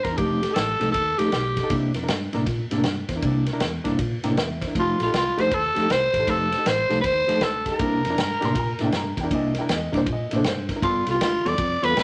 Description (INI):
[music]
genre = electric blues shuffle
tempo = 158 BPM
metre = 4/4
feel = swing 64% on 8ths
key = C mixolydian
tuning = A4 = 439 Hz
[part]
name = growling tenor saxophone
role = melody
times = 0.0-1.9, 4.8-12.0 s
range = F4 to D5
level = -25 LUFS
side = equal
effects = none
[part]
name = reed electric piano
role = accompaniment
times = 0.0-12.0 s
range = B3 to Bb5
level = -34 LUFS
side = equal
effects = overdrive, fast tremolo
[part]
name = fingered electric bass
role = bass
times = 0.0-12.0 s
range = F1 to Bb2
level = -32 LUFS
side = equal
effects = none
[part]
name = vintage drum kit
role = drums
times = 0.0-12.0 s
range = kick drum, ride cymbal, snare drum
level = -31 LUFS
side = equal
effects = none
[part]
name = mellow electric guitar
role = riff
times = 0.1-12.0 s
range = C3 to A4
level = -29 LUFS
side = equal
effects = harmonic tremolo
[part]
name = dark upright piano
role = second line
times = 8.2-10.8 s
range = C5 to C6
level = -34 LUFS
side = equal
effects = none
[sound]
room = wet club reverb, RT60 0.7 s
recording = none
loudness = -23 LUFS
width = mono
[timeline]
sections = 0.0-12.0 A section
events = reed electric piano fill 4.0-4.8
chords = 0.2 F9; 1.7 C9; 4.8 F9; 7.8 C9; 10.8 G9